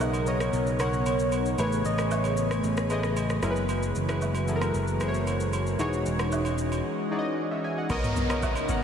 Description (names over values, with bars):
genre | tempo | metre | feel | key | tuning
amapiano | 114 BPM | 4/4 | straight | B major | A4 = 438 Hz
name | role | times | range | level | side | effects
soft struck synth lead | melody | 0.0-3.2 s | A#4 to D#5 | -32 LUFS | right 1 dB | chorus, ping-pong delay
warm analog keys | accompaniment | 0.0-8.8 s | E3 to G#5 | -30 LUFS | left 1 dB | chorus
airy breathy pad | sustained chords | 0.0-8.8 s | C#3 to A#4 | -32 LUFS | equal | chorus, phaser
picked electric bass | bass | 0.0-6.8 s | E1 to B1 | -29 LUFS | right 1 dB | none
smooth R&B drum kit | drums | 0.0-8.8 s | kick drum, rim click, shaker, toms | -36 LUFS | equal | vintage 12-bit sampler grit
woodblock and agogo bells | percussion | 0.0-8.7 s | none | -38 LUFS | right 3 dB | none
deep log drum bass | bass | 7.9-8.8 s | G#1 to B1 | -30 LUFS | right 1 dB | none
downlifter | sound effects | 7.9-8.8 s | none | -36 LUFS | right 2 dB | none
room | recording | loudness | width
wet cathedral reverb, RT60 5.3 s | dreamy mix soaked in reverb | -24 LUFS | side -8 dB against mid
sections
0.0-7.9 A section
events
break 6.8-7.9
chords
0.0 Bmaj9; 1.6 Amaj9; 3.4 F#9sus4; 5.8 Emaj13; 7.9 Bmaj9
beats
0.01 0.53 1.06 | 1.58 2.11 2.64 3.16 | 3.69 4.21 4.74 5.27 | 5.79 6.32 6.85 7.37 | 7.90 8.43